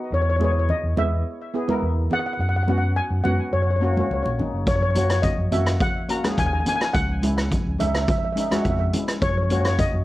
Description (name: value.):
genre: calypso.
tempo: 106 BPM.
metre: 4/4.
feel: straight.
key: unclear.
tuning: A4 = 439 Hz.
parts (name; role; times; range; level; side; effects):
steel pan; accompaniment; 0.0-9.8 s; G#3 to A#4; -28 LUFS; left 1 dB; none.
steel pan; melody; 0.1-10.0 s; C#5 to A#5; -25 LUFS; left 1 dB; ping-pong delay.
overdriven fingered electric bass; bass; 0.1-10.0 s; F#1 to F#2; -23 LUFS; equal; none.
congas; percussion; 0.4-9.9 s; none; -30 LUFS; right 1 dB; none.
street-band drum kit; drums; 4.7-9.9 s; hi-hat, kick drum, rim click; -25 LUFS; equal; none.
room: light reverb.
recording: worn, warbling old tape, cassette tape, warbly pitch drift.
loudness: -20 LUFS.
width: side -16 dB against mid.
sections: 0.0-10.0 A section.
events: none.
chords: 0.1 E; 2.4 F#sus4; 3.5 F#; 6.9 C#m; 9.2 F#.